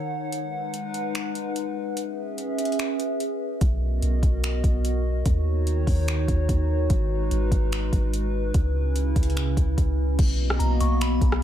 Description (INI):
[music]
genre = hip hop, atmospheric cloud-rap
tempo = 146 BPM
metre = 4/4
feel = half-time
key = G# minor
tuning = A4 = 439 Hz
[part]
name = warbly tape-like pad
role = sustained chords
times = 0.0-11.4 s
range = C#3 to F#5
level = -28 LUFS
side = equal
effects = chorus, built-in reverb, sidechain pumping
[part]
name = smooth R&B drum kit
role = drums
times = 0.3-11.4 s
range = crash cymbal, finger snaps, hi-hat, kick drum, rim click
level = -24 LUFS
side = equal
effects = none
[part]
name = soft 808-style bass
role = bass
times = 3.6-11.4 s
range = G#1 to D#2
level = -24 LUFS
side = equal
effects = none
[part]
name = delicate synth tine bell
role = melody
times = 10.6-11.4 s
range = A#5 to C#6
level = -30 LUFS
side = equal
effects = chorus, phaser, tremolo, low-pass filter
[sound]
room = little or no reverb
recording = none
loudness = -22 LUFS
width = side -10 dB against mid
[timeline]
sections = 0.0-10.2 A section; 10.2-11.4 B section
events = break 0.0-3.6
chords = 0.3 G#m7; 2.0 C#m7; 3.6 Bmaj7; 5.3 D#m7; 6.9 G#m7; 8.5 C#m7; 10.2 Bmaj7